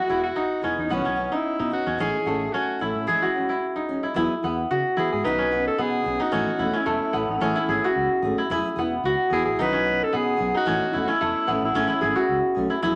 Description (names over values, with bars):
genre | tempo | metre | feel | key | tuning
highlife guitar band | 111 BPM | 4/4 | straight | E major | A4 = 441 Hz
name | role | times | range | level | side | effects
warm alto saxophone | melody | 0.0-12.5 s | C#4 to B4 | -29 LUFS | equal | none
kora | arpeggios | 0.0-13.0 s | A3 to G#4 | -26 LUFS | equal | none
fingerpicked steel-string acoustic guitar | accompaniment | 0.1-13.0 s | D#3 to G#4 | -31 LUFS | equal | none
fingered electric bass | bass | 0.1-13.0 s | E1 to E3 | -36 LUFS | equal | none
room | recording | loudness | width
wet studio reverb, RT60 0.6 s | none | -24 LUFS | mono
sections
0.0-4.2 A section; 4.2-13.0 B section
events
none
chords
0.0 Eadd9; 0.9 Badd9; 2.0 F#m7/A; 3.1 Emaj13; 4.2 Eadd9; 5.2 Badd9; 6.3 F#m7; 7.4 Amaj7; 8.5 Eadd9; 9.6 Badd9; 10.7 F#m7; 11.8 Amaj7